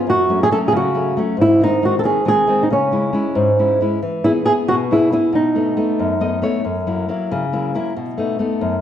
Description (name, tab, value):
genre	italian folk, Italian serenade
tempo	92 BPM (dotted quarters)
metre	6/8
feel	straight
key	C# minor, E major from 4.0 s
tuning	A4 = 440 Hz
part	nylon-string guitar	accompaniment	0.0-8.8 s	F#2 to D#5	-18 LUFS	left 2 dB	none
part	flamenco guitar	melody	0.1-6.2 s	C#4 to A4	-16 LUFS	right 1 dB	none
room	wet recital hall reverb, RT60 1.5 s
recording	dark, warm production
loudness	-15 LUFS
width	side -10 dB against mid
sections	0.0-4.0 A section; 4.0-8.8 B section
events	nylon-string guitar fill 6.0-6.7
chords	0.1 F#m; 1.4 G#; 2.7 C#m; 4.0 E; 5.3 B7; 6.7 F#7; 8.0 B7